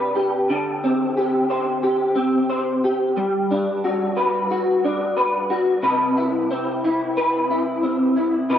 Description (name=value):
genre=indie pop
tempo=90 BPM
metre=4/4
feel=straight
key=C lydian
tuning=A4 = 439 Hz
part: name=electric guitar through a small old amp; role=solo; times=0.0-8.6 s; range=C3 to C5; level=-18 LUFS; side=equal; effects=ensemble chorus, vibrato effect
room=moderate spring reverb, RT60 1.4 s, digital ambience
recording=worn, warbling old tape, cassette tape, warbly pitch drift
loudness=-18 LUFS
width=side -9 dB against mid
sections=0.0-5.8 A section; 5.8-8.6 B section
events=none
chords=0.5 D7sus4; 3.2 Gmaj7; 5.8 Cmaj7